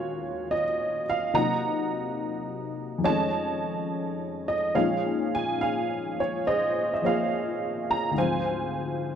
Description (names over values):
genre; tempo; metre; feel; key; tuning
solo jazz; 70 BPM; 4/4; swing 69% on 8ths; Bb minor; A4 = 437 Hz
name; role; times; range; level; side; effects
honky-tonk upright piano; solo; 0.0-9.2 s; D2 to Bb5; -25 LUFS; equal; none
room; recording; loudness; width
moderate large studio reverb, RT60 1.2 s; close, detailed microphones; -25 LUFS; side -8 dB against mid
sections
0.0-9.2 A section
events
none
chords
0.0 Ebm11; 1.3 Cm7b5; 3.0 F7alt; 4.7 Bbm11; 8.2 Dm7b5